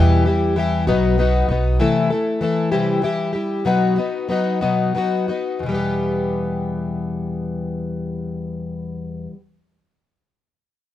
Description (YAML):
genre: folk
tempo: 58-66 BPM (dotted quarters)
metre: 6/8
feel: straight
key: E minor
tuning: A4 = 443 Hz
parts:
  - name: fingerpicked plugged-in twelve-string acoustic guitar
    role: accompaniment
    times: 0.0-9.4 s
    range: E2 to A4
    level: -19 LUFS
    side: left 2 dB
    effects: none
  - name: upright bass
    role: bass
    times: 0.0-1.8 s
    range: B1 to E2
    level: -18 LUFS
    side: right 1 dB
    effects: none
room: light reverb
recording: close, detailed microphones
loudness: -18 LUFS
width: side -12 dB against mid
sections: 0.0-5.6 A section; 5.6-9.8 B section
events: slowing down 1.8-5.6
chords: 0.0 Em; 0.9 B; 1.8 Am/C; 2.7 C; 3.6 B; 5.6 Em